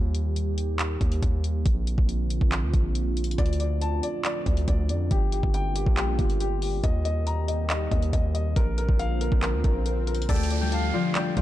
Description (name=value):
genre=hip hop, trap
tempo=139 BPM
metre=4/4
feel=half-time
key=D phrygian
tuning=A4 = 440 Hz
part: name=dark analog pad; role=sustained chords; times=0.0-11.4 s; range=D3 to G4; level=-33 LUFS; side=right 2 dB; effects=chorus, phaser
part: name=hard-hitting 808-style bass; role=bass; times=0.0-11.4 s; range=G1 to F2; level=-26 LUFS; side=equal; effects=none
part: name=trap drum kit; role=drums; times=0.1-11.4 s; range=handclaps, hi-hat, kick drum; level=-26 LUFS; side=equal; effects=none
part: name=dark baby grand piano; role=accompaniment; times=3.4-11.4 s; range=G4 to Bb5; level=-32 LUFS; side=left 4 dB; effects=none
part: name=swell and downlifter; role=sound effects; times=8.9-11.4 s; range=none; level=-37 LUFS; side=right 1 dB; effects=none
part: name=concert harp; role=melody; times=10.3-11.4 s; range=F3 to A4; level=-27 LUFS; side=left 6 dB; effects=none
part: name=concert flute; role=second line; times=10.3-11.1 s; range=F5 to G5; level=-34 LUFS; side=right 1 dB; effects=ping-pong delay
room=little or no reverb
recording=dark, warm production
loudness=-23 LUFS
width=side -14 dB against mid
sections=0.0-10.3 A section; 10.3-11.4 B section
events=swell 8.9-10.3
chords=0.0 Eb; 1.7 Bbadd9; 3.4 Dm; 5.1 Gm7; 6.8 Eb; 8.6 Bbadd9; 10.3 Dm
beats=0.36 0.79 1.23 | 1.66 2.09 2.52 2.95 | 3.38 3.81 4.25 4.68 | 5.11 5.54 5.97 6.41 | 6.84 7.27 7.70 8.13 | 8.56 8.99 9.43 9.86 | 10.29 10.72 11.15